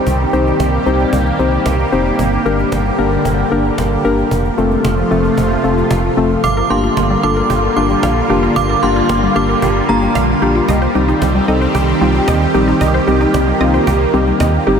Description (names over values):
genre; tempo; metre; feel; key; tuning
synth-pop; 113 BPM; 4/4; straight; G minor; A4 = 440 Hz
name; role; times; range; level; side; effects
lush unison pad; sustained chords; 0.0-14.8 s; C3 to G4; -17 LUFS; right 1 dB; chorus, phaser
solid FM bass; bass; 0.1-14.8 s; F1 to Eb2; -18 LUFS; right 1 dB; none
cajon; drums; 0.1-14.6 s; none; -25 LUFS; right 1 dB; none
warbly dusty pluck; accompaniment; 0.3-14.8 s; G3 to C5; -17 LUFS; left 4 dB; chorus
synth chime; second line; 6.4-10.0 s; Bb5 to D6; -21 LUFS; right 4 dB; ensemble chorus, tape echo
resonant blip pluck; arpeggios; 6.4-14.8 s; G3 to F5; -20 LUFS; right 2 dB; chorus, tape echo
room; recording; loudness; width
wet huge ambient reverb, RT60 7.6 s; dreamy mix soaked in reverb; -12 LUFS; side -7 dB against mid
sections
0.0-6.4 A section; 6.4-14.8 B section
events
none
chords
0.0 Cm; 2.2 Gm; 4.3 F; 6.4 Gm7; 10.7 Cm